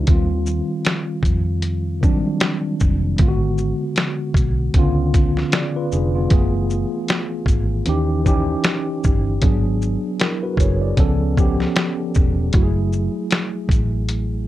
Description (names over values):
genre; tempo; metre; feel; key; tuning
lo-fi hip hop; 77 BPM; 4/4; swing 57% on 16ths; unclear; A4 = 440 Hz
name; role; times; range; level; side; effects
mellow tine electric piano; accompaniment; 0.0-14.5 s; D3 to D5; -22 LUFS; equal; medium stereo tremolo, cassette tape, low-pass filter
vintage muted fingered electric bass; bass; 0.0-14.5 s; E1 to E#2; -21 LUFS; equal; none
trip hop sampler-style drum kit; drums; 0.1-14.3 s; hi-hat, kick drum, shaker, snare drum; -18 LUFS; equal; none
room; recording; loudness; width
light reverb; cassette tape; -17 LUFS; side -14 dB against mid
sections
0.0-14.5 A section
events
none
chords
0.1 D#69; 3.2 G#m7b5; 4.8 C#7b9; 6.3 F#m11; 7.9 D#7b9; 9.4 G#m7b5; 11.0 C#7alt; 12.5 F#m9